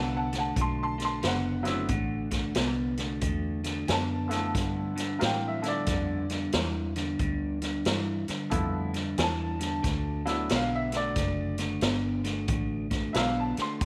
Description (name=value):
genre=electric blues shuffle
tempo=91 BPM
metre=4/4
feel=swing 64% on 8ths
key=D mixolydian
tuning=A4 = 439 Hz
part: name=clear baby grand piano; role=accompaniment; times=0.0-13.8 s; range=F3 to C6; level=-34 LUFS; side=equal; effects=none
part: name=electric guitar through a small old amp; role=riff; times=0.0-13.8 s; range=G2 to B3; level=-34 LUFS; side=equal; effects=none
part: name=vintage muted fingered electric bass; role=bass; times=0.0-13.8 s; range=F#1 to A2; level=-36 LUFS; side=equal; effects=none
part: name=swinging big-band drum kit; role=drums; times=0.3-13.8 s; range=hi-hat, kick drum, snare drum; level=-34 LUFS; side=equal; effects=none
room=light reverb, studio ambience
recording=none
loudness=-29 LUFS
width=mono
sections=0.0-13.8 A section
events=none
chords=0.0 D13; 4.5 G13; 9.8 D69